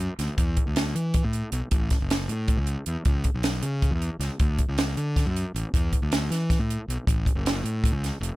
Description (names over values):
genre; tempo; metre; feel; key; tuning
math rock and midwest emo; 314 BPM (eighths); 7/8; straight; A major; A4 = 440 Hz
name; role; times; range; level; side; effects
fuzz fingered electric bass; bass; 0.0-8.3 s; F1 to E3; -27 LUFS; equal; overdrive
compact cocktail drum kit; drums; 0.2-8.3 s; hi-hat, kick drum, snare drum; -24 LUFS; equal; none
room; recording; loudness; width
little or no reverb; none; -23 LUFS; side -18 dB against mid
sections
0.0-8.4 A section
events
none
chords
none